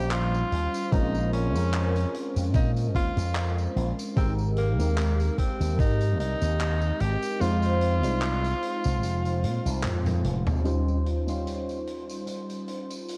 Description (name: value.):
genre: vaporwave.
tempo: 74 BPM.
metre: 4/4.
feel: swing 55% on 16ths.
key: unclear.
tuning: A4 = 440 Hz.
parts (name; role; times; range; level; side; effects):
edgy tenor saxophone; melody; 0.0-9.8 s; Bb3 to G4; -34 LUFS; equal; tape echo.
FM electric piano with soft pad layer; accompaniment; 0.0-13.2 s; G3 to C6; -34 LUFS; equal; phaser, lush chorus, analog delay.
slap bass with an envelope filter; bass; 0.0-10.6 s; F1 to C3; -28 LUFS; equal; none.
big rock drum kit; drums; 0.1-13.2 s; handclaps, hi-hat, tambourine, toms; -36 LUFS; equal; none.
electronic kick drum; drums; 0.9-6.0 s; none; -28 LUFS; equal; none.
clean electric guitar; riff; 10.6-12.5 s; Db4 to Db5; -39 LUFS; equal; subtle chorus, low-pass filter, analog delay.
room: light reverb, small room ambience.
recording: worn, warbling old tape, cassette tape, warbly pitch drift.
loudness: -26 LUFS.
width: mono.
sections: 0.0-10.7 A section; 10.7-13.2 B section.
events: kick drops out 7.4-10.7; drum fill 9.8-10.7; filter sweep on clean electric guitar 10.7-13.2.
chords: 0.0 Eb13; 0.9 Bbm9; 4.2 Abmaj9; 7.4 Fm7; 10.7 Eb13.